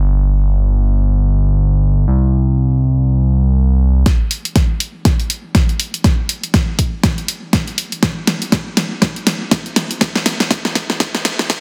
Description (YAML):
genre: deep house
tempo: 121 BPM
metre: 4/4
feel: swing 58% on 16ths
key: unclear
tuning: A4 = 438 Hz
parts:
  - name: smooth synth bass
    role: bass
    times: 0.0-4.0 s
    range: G1 to C2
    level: -14 LUFS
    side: equal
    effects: sidechain pumping
  - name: deep house drum kit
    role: drums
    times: 4.1-11.6 s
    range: hi-hat, snare drum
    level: -19 LUFS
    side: equal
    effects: none
  - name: electronic kick drum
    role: drums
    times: 4.1-11.6 s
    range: none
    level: -18 LUFS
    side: equal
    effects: none
room: light reverb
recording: dense, heavily limited modern master, high-pass filter, low-pass filter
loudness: -16 LUFS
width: mono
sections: 0.0-4.1 A section; 4.1-11.6 B section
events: filter sweep 0.0-4.1, 4.1-11.6; build-up 4.1-11.6; drum fill 4.1-11.6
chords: none